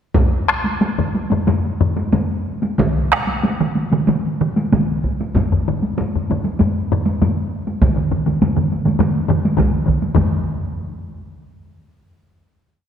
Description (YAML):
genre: japanese traditional, taiko drum ensemble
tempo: 90-113 BPM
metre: 4/4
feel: straight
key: none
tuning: none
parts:
  - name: taiko ensemble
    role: percussion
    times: 0.1-10.4 s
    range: none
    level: -20 LUFS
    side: equal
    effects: none
  - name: taiko ensemble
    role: percussion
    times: 0.1-10.7 s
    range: none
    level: -20 LUFS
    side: left 3 dB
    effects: none
  - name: taiko ensemble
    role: percussion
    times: 0.1-10.4 s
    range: none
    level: -21 LUFS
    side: equal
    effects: none
  - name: taiko ensemble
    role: percussion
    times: 2.8-10.7 s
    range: none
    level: -19 LUFS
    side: right 3 dB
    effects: none
room: wet concert hall reverb, RT60 2.1 s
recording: none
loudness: -16 LUFS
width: side -8 dB against mid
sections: 0.1-10.2 A section; 10.2-12.4 final hit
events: speeding up 0.1-12.4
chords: none